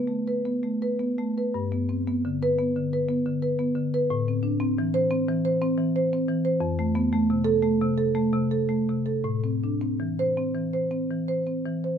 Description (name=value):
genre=classical, contemporary piece for solo marimba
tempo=117 BPM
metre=5/4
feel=uneven beats, rubato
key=A minor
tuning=A4 = 439 Hz
part: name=marimba with soft mallets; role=solo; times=0.0-12.0 s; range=F2 to C5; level=-23 LUFS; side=equal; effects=none
room=moderate large studio reverb, RT60 0.8 s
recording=none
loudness=-23 LUFS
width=side -8 dB against mid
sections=0.0-12.0 A section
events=none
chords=0.0 D5; 1.5 G; 4.1 Am; 6.6 F; 9.3 Am